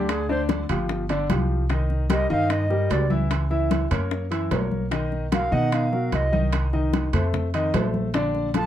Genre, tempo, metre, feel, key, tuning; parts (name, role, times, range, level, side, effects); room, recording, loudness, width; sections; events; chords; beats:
Afro-Cuban jazz; 149 BPM; 4/4; straight; A4 = 440 Hz
bright reedy bansuri; melody; 0.0-8.7 s; G4 to A5; -26 LUFS; right 2 dB
clear upright piano; accompaniment; 0.0-8.7 s; D3 to E5; -26 LUFS; left 2 dB
upright bass; bass; 0.0-8.7 s; G1 to B2; -25 LUFS; equal
bongos; percussion; 0.1-8.7 s; -31 LUFS; left 7 dB
congas; percussion; 0.1-8.7 s; -28 LUFS; equal
timbales; percussion; 0.1-8.7 s; -32 LUFS; right 7 dB
moderate club reverb, RT60 0.5 s; dark, warm production; -21 LUFS; side -11 dB against mid
0.0-8.7 A section
bansuri solo 0.0-8.7
0.1 Fm69; 0.9 G5; 1.7 Cm7; 3.3 Dbm; 4.1 Gb7; 4.9 Bmaj7; 6.5 Cm; 7.3 F7; 8.1 Bbmaj7
| 0.09 0.50 0.90 1.30 | 1.70 2.10 2.51 2.91 | 3.31 3.71 4.12 4.52 | 4.92 5.33 5.73 6.13 | 6.53 6.94 7.34 7.74 | 8.14 8.55